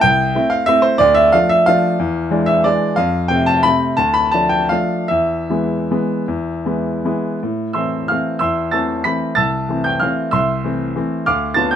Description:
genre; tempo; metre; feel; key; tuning
classical, piano waltz; 145-203 BPM; 3/4; rubato; A minor; A4 = 440 Hz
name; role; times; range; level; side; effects
clear grand piano; solo; 0.0-11.8 s; C2 to B6; -14 LUFS; equal; none
room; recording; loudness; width
light reverb; minimal, uncompressed stereo recording; -14 LUFS; side -9 dB against mid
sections
0.0-7.4 A section; 7.4-11.8 B section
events
none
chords
0.0 Am/C; 1.0 Dm; 2.0 E7; 3.0 F; 4.0 Dm; 5.1 E; 7.4 Am; 9.4 Am/C

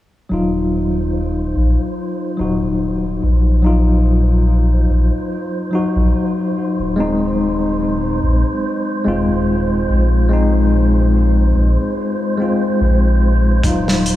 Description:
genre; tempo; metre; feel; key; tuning
trip hop; 72 BPM; 4/4; swing 56% on 16ths; Eb dorian; A4 = 438 Hz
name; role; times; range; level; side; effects
bright tine electric piano; accompaniment; 0.3-14.2 s; Gb3 to Gb4; -18 LUFS; left 2 dB; tremolo, vintage 12-bit sampler grit, low-pass filter, tape echo
dark detuned saw bass; bass; 0.3-14.2 s; Eb1 to Bb1; -15 LUFS; equal; none
wind-like tuned noise texture; texture; 0.7-14.2 s; C5; -27 LUFS; right 3 dB; built-in reverb
crunchy breakbeat drum kit; drums; 13.6-14.2 s; hi-hat, kick drum, snare drum; -17 LUFS; equal; vintage 12-bit sampler grit
room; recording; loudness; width
moderate huge ambient reverb, RT60 8.6 s; dreamy mix soaked in reverb, studio reverb; -14 LUFS; side -14 dB against mid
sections
0.3-14.2 A section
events
none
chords
0.3 Ebmadd9; 7.0 Fm7/Eb; 13.6 Ebmadd9

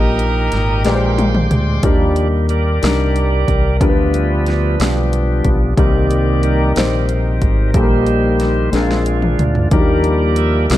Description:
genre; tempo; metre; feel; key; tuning
slow gospel; 61 BPM (dotted quarters); 6/8; straight; Eb major; A4 = 439 Hz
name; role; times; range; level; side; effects
bright saxophone section; melody; 0.0-1.5 s; Eb4 to Bb4; -21 LUFS; right 2 dB; slapback echo
warm upright piano; accompaniment; 0.0-10.8 s; Bb2 to Eb5; -19 LUFS; left 3 dB; none
bright tonewheel organ; sustained chords; 0.0-10.8 s; Eb3 to Eb6; -20 LUFS; right 2 dB; slow rotary speaker, overdrive
fingered electric bass with an envelope filter; bass; 0.0-10.8 s; Ab1 to Eb2; -17 LUFS; equal; none
deep house drum kit; drums; 0.2-10.8 s; hi-hat, kick drum, snare drum, toms; -17 LUFS; equal; none
room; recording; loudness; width
light reverb; dark, warm production; -13 LUFS; side -14 dB against mid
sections
0.0-1.8 A section; 1.8-10.8 B section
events
drum fill 0.8-1.8, 8.7-9.7; tonewheel organ solo 1.8-10.8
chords
0.0 Eb/Bb; 0.8 Bb13; 1.8 Ebmaj7; 3.8 G7/D; 5.8 Cm7; 7.7 Eb/Bb; 8.7 Bb7; 9.7 Ebmaj7

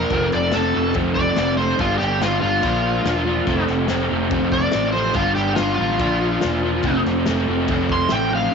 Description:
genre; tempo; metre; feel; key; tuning
garage rock duo or trio; 142 BPM; 4/4; straight; unclear; A4 = 440 Hz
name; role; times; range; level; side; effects
overdriven slide guitar; melody; 0.0-8.5 s; F4 to C6; -22 LUFS; equal; none
crunchy overdriven guitar; riff; 0.0-8.5 s; F2 to D4; -20 LUFS; equal; harmonic tremolo
growling picked electric bass; bass; 0.0-8.5 s; E1 to Bb1; -25 LUFS; right 1 dB; overdrive
crunchy breakbeat drum kit; drums; 0.1-8.2 s; crash cymbal, kick drum, snare drum; -28 LUFS; left 3 dB; none
room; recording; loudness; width
light reverb, small room ambience; 1960s-style stereo, nothing above 7.8 kHz; -17 LUFS; side -6 dB against mid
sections
0.0-8.5 A section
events
electric slide guitar solo 0.0-8.5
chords
0.1 F; 1.8 G; 2.6 Bb; 3.5 F; 5.2 G; 6.0 Bb; 6.8 F

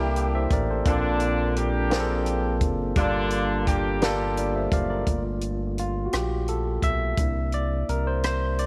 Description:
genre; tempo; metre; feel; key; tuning
slow six-eight R&B; 57 BPM (dotted quarters); 6/8; straight; G dorian; A4 = 442 Hz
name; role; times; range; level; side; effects
barky tine electric piano; accompaniment; 0.0-8.7 s; G3 to G5; -29 LUFS; equal; overdrive
warm horn section; stabs; 0.0-4.7 s; D3 to G4; -32 LUFS; equal; none
round analog bass; bass; 0.0-8.7 s; F#1 to C2; -30 LUFS; equal; none
compact cocktail drum kit; drums; 0.2-8.7 s; hi-hat, kick drum, rim click, snare drum; -30 LUFS; equal; none
room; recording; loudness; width
light reverb, small room ambience; none; -25 LUFS; mono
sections
0.0-5.1 A section; 5.1-8.7 B section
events
tine electric piano solo 5.1-8.7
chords
0.0 C13; 0.9 Bbmaj7; 3.0 Gm9; 7.2 C9

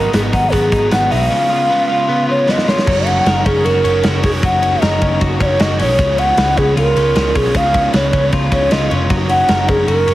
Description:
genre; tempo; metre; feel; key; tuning
jangly indie pop; 154 BPM; 4/4; straight; F# major; A4 = 440 Hz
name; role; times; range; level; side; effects
round clay ocarina; melody; 0.0-10.1 s; G#4 to F#5; -15 LUFS; equal; none
crunchy overdriven guitar; accompaniment; 0.0-10.1 s; G#2 to C#5; -22 LUFS; right 3 dB; none
twelve-string electric guitar; arpeggios; 0.0-10.1 s; G#2 to B4; -21 LUFS; left 4 dB; none
vintage muted picked electric bass; bass; 0.0-10.1 s; E#1 to C#2; -19 LUFS; equal; none
big rock drum kit; drums; 0.1-10.1 s; crash cymbal, hi-hat, kick drum, ride cymbal, snare drum; -18 LUFS; equal; none
room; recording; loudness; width
light reverb, studio ambience; heavily compressed radio sound, vinyl crackle; -12 LUFS; side -15 dB against mid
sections
0.0-2.9 A section; 2.9-10.1 B section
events
drum fill 2.5-2.9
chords
0.0 G#m7; 1.3 C#7; 2.9 F#6; 6.0 C#7; 9.1 F#6

